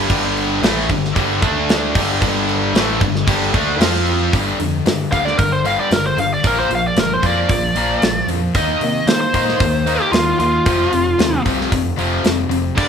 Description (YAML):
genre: hard rock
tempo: 114 BPM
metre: 4/4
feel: straight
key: G minor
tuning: A4 = 439 Hz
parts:
  - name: distorted electric guitar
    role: riff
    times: 0.0-12.9 s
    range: F2 to F4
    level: -23 LUFS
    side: right 8 dB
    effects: overdrive
  - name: heavy high-gain guitar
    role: riff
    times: 0.0-12.9 s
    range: F2 to F4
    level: -21 LUFS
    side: left 8 dB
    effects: distortion
  - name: high-gain distorted guitar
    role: riff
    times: 0.0-4.3, 12.8-12.9 s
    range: G2 to F4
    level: -23 LUFS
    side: right 2 dB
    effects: distortion
  - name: overdriven picked electric bass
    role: bass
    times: 0.0-12.9 s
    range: F1 to Eb3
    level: -24 LUFS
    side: equal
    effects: none
  - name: tight metal drum kit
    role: drums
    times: 0.1-12.9 s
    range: crash cymbal, hi-hat, kick drum, snare drum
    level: -19 LUFS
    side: right 1 dB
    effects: none
  - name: biting lead guitar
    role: melody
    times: 5.1-12.9 s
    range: F4 to F5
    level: -18 LUFS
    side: equal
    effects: overdrive
room: light reverb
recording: band playing live in one room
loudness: -14 LUFS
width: side -7 dB against mid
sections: 0.0-4.3 A section; 4.3-12.9 B section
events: lead electric guitar solo 4.3-12.9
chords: 0.0 G5; 1.4 D5; 1.9 G5; 3.8 F5; 4.3 G5; 6.4 Bb; 8.6 Eb5; 10.7 F5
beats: | 0.10 0.63 1.16 1.69 | 2.21 2.74 3.27 3.80 | 4.33 4.85 5.38 5.91 | 6.44 6.97 7.49 8.02 | 8.55 9.08 9.61 10.13 | 10.66 11.19 11.72 12.25 | 12.78